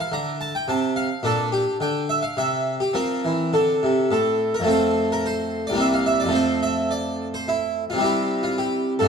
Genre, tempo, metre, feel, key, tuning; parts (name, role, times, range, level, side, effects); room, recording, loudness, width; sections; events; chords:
classical, baroque-style suite movement for harpsichord; 108 BPM; 3/4; rubato; F major; A4 = 441 Hz
harpsichord; solo; 0.0-9.1 s; C2 to Bb5; -20 LUFS; equal
moderate recital hall reverb, RT60 1.7 s; dark, warm production; -20 LUFS; side -6 dB against mid
0.0-4.7 A section; 4.7-9.1 B section
0.0 Dmadd9; 0.7 N.C.; 1.2 Bb6; 2.4 N.C.; 2.9 F; 5.8 C5; 6.4 F; 8.0 C